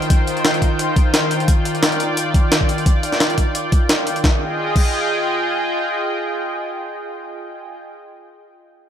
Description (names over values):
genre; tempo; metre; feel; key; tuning
liquid drum and bass; 174 BPM; 4/4; swing 54% on 16ths; F dorian; A4 = 440 Hz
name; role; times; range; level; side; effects
lush unison pad; sustained chords; 0.0-7.8 s; Eb3 to G5; -20 LUFS; equal; chorus, sidechain pumping
jungle sampler-style drum kit; drums; 0.0-4.9 s; crash cymbal, hi-hat, snare drum; -20 LUFS; equal; overdrive
electronic kick drum; drums; 0.1-4.9 s; none; -16 LUFS; equal; overdrive
room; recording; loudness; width
light reverb; none; -16 LUFS; side -9 dB against mid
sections
0.0-4.2 A section; 4.2-7.0 B section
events
none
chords
0.0 Eb69; 4.2 Fm9